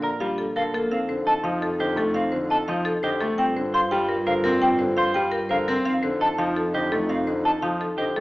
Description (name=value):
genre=classical, minimalist pattern music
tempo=340 BPM (eighths)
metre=7/8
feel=straight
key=unclear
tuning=A4 = 440 Hz
part: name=marimba with hard mallets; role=melody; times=0.0-8.2 s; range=A4 to G5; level=-27 LUFS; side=left 2 dB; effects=none
part: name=mellow hollow alto flute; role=second line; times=0.0-8.1 s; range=D4 to F4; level=-30 LUFS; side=right 1 dB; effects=none
part: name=dark concert grand piano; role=accompaniment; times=0.0-8.2 s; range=D3 to C4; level=-27 LUFS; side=equal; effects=none
part: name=clean electric guitar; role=arpeggios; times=0.0-8.2 s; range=C4 to C5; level=-29 LUFS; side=right 2 dB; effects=none
part: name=mellow concert flute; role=arpeggios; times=0.0-8.0 s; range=Eb5 to C6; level=-26 LUFS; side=left 1 dB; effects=none
part: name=warm double bass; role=bass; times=0.0-8.2 s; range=Bb1 to G2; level=-34 LUFS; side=right 1 dB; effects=none
room=moderate recital hall reverb, RT60 1.6 s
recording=small speaker sound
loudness=-21 LUFS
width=side -19 dB against mid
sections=0.0-8.2 A section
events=none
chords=0.0 Bb6; 0.9 F9; 3.4 Gm7; 5.9 F9